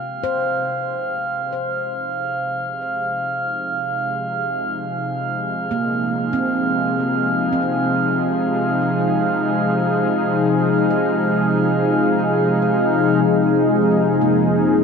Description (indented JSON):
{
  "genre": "ambient",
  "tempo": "70 BPM",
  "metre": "4/4",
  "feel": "straight",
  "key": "F minor",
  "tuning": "A4 = 440 Hz",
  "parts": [
    { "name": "warm analog pad", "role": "sustained chords", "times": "0.0-14.8 s", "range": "C3 to Ab4", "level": "-19 LUFS", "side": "left 1 dB", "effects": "chorus" },
    { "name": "glass harmonica", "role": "texture", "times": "0.0-14.8 s", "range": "F5 to F6", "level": "-23 LUFS", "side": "right 2 dB", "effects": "none" },
    { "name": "handpan", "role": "arpeggios", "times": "0.2-14.8 s", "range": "Bb3 to Eb5", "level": "-26 LUFS", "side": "right 1 dB", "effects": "ping-pong delay" },
    { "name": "dark studio double bass section", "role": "bass", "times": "13.2-14.8 s", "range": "F1", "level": "-41 LUFS", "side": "left 1 dB", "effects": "none" },
    { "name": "organ-like drone", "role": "drone", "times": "13.2-14.8 s", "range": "none", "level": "barely audible", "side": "none", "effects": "none" }
  ],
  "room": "wet huge ambient reverb, RT60 8.1 s",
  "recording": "none",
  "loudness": "-17 LUFS",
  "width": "side -5 dB against mid",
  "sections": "0.0-13.2 A section; 13.2-14.8 B section",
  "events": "fade-in on analog synth pad 0.0-13.2; fade-out on handpan 0.0-13.2",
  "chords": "0.0 Fm7"
}